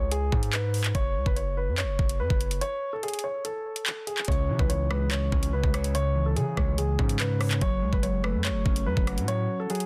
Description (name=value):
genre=hip hop, drill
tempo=144 BPM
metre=4/4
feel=half-time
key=unclear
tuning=A4 = 440 Hz
part: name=dark grand piano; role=melody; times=0.0-9.9 s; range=G#4 to C#5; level=-34 LUFS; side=equal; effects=digital delay
part: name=hard-hitting 808-style bass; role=bass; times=0.0-9.5 s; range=F#1 to C#3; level=-31 LUFS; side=equal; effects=none
part: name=drill drum kit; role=drums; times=0.1-9.9 s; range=handclaps, hi-hat, kick drum, rim click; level=-30 LUFS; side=equal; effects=none
part: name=mellow electric guitar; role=accompaniment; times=4.3-9.9 s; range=C#3 to C#5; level=-32 LUFS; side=equal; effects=none
room=digital ambience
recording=dense, heavily limited modern master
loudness=-27 LUFS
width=mono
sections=0.0-9.9 A section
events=break 2.6-4.3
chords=0.0 C#5; 0.9 F#m; 4.3 C#m; 7.6 F#madd9